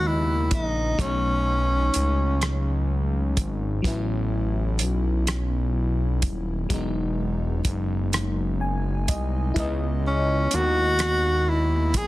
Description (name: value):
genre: slow six-eight R&B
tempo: 42 BPM (dotted quarters)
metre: 6/8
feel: straight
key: E major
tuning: A4 = 438 Hz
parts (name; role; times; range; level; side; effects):
- breathy tenor saxophone; melody; 0.0-2.9, 10.1-12.1 s; C#4 to G#4; -24 LUFS; equal; tape echo
- FM electric piano with soft pad layer; accompaniment; 0.0-12.1 s; C#3 to G#5; -29 LUFS; left 2 dB; chorus
- fat analog bass; bass; 0.0-12.1 s; D#1 to D#2; -24 LUFS; equal; none
- warm soul drum kit; drums; 0.5-12.1 s; hi-hat, kick drum, rim click; -26 LUFS; equal; soft clipping on snare
room: light reverb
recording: dense, heavily limited modern master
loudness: -22 LUFS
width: side -17 dB against mid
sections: 0.0-12.1 A section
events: FM electric piano fill 8.1-9.6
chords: 0.0 C#sus2; 1.0 B9; 3.8 A69; 6.7 Emaj9; 9.6 C#m9